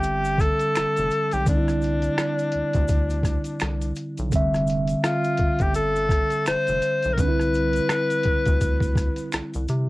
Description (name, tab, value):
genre	R&B, neo-soul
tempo	84 BPM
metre	4/4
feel	swing 59% on 16ths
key	F lydian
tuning	A4 = 440 Hz
part	breathy tenor saxophone	melody	0.0-9.3 s	D4 to C5	-24 LUFS	left 2 dB	none
part	mellow tine electric piano	accompaniment	0.0-9.9 s	D3 to E5	-26 LUFS	right 2 dB	slow stereo tremolo
part	rubbery square bass	bass	0.0-9.9 s	F1 to C3	-27 LUFS	equal	none
part	boom bap sampler-style drum kit	drums	0.0-9.9 s	hi-hat, kick drum, rim click	-24 LUFS	equal	cassette tape
part	tube shaker and finger snaps	percussion	0.0-9.9 s	none	-38 LUFS	right 2 dB	none
room	light reverb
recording	home recording on cassette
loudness	-20 LUFS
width	side -19 dB against mid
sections	0.0-9.9 A section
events	none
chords	0.0 Fmaj9; 1.5 Cadd9; 4.3 Fmaj9; 7.2 Cmaj9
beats	0.04 0.75 | 1.46 2.18 2.89 3.61 | 4.32 5.04 5.75 6.46 | 7.18 7.89 8.61 9.32